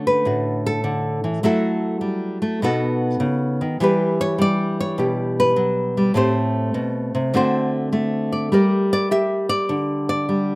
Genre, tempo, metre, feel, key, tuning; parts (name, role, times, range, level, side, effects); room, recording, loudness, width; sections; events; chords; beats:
solo jazz; 102 BPM; 4/4; swing 68% on 8ths; D major; A4 = 440 Hz
nylon-string guitar; solo; 0.0-10.6 s; A2 to E5; -18 LUFS; equal
little or no reverb; recorded outdoors, with no room sound; -18 LUFS; side -24 dB against mid
0.0-10.6 A section
nylon-string guitar solo 0.0-10.6
0.0 Dmaj7; 1.4 F#m7; 2.6 B7; 3.8 Em7; 6.1 Am9; 7.3 D7; 8.5 Gm
0.25 0.84 | 1.43 2.02 2.61 3.20 | 3.79 4.38 4.97 5.56 | 6.15 6.74 7.33 7.92 | 8.51 9.10 9.69 10.28